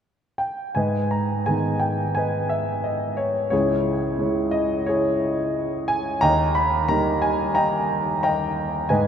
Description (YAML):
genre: classical, lyrical solo piano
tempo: 89 BPM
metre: 4/4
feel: rubato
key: G# harmonic minor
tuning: A4 = 440 Hz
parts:
  - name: warm grand piano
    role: solo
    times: 0.4-9.1 s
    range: C#2 to B5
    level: -20 LUFS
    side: equal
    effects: none
room: wet cathedral reverb, RT60 6.2 s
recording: in a vast, echoing space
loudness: -20 LUFS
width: side -8 dB against mid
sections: 0.8-9.1 A section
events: none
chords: 0.0 N.C.; 0.8 G#m; 3.5 C#m; 6.2 D#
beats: 0.06 | 0.75 1.46 2.16 2.85 | 3.52 4.20 4.88 5.56 | 6.23 6.89 7.56 8.24 | 8.90